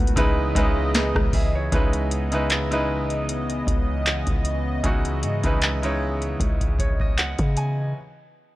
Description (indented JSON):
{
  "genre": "contemporary R&B",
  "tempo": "77 BPM",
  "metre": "4/4",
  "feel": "swing 54% on 16ths",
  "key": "C# minor",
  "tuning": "A4 = 439 Hz",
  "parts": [
    { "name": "bright grand piano", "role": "accompaniment", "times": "0.0-8.0 s", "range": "B2 to G#5", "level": "-26 LUFS", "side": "right 1 dB", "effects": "none" },
    { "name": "chorused pulse-width pad", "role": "sustained chords", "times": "0.0-7.9 s", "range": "C#3 to D#5", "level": "-29 LUFS", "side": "equal", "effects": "none" },
    { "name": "warm 808-style bass", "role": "bass", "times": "0.0-7.9 s", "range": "C#2 to C#3", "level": "-26 LUFS", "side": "equal", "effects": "none" },
    { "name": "booming analog drum machine", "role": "drums", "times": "0.1-7.8 s", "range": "handclaps, hi-hat, kick drum, rim click, snare drum", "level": "-22 LUFS", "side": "equal", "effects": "none" }
  ],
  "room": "little or no reverb",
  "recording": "dry, gritty hardware recording",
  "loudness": "-20 LUFS",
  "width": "side -17 dB against mid",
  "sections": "0.0-1.7 A section; 1.7-8.0 B section",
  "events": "grand piano fill 6.4-8.0",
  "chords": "0.2 C#m9"
}